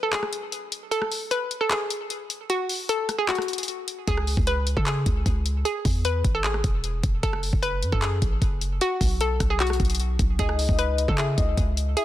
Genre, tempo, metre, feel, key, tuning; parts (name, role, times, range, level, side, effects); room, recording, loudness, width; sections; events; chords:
hip hop, trap; 152 BPM; 4/4; half-time; A4 = 440 Hz
hollow square pluck; melody; 0.0-12.0 s; F#4 to B4; -27 LUFS; left 1 dB; chorus, low-pass filter, ping-pong delay
trap drum kit; drums; 0.1-12.0 s; handclaps, hi-hat, kick drum, rim click; -26 LUFS; equal
warm 808-style bass; bass; 4.1-12.0 s; E1 to C#3; -25 LUFS; equal
soft octave-layered synth lead; second line; 10.4-12.0 s; D#5 to E5; -29 LUFS; left 7 dB; chorus, tremolo, ping-pong delay
digital ambience; dense, heavily limited modern master; -22 LUFS; side -13 dB against mid
0.0-12.0 A section
break 0.0-4.1
0.0 N.C.; 4.1 C#5; 5.7 E; 7.2 F#m; 8.8 B5; 10.4 C#sus2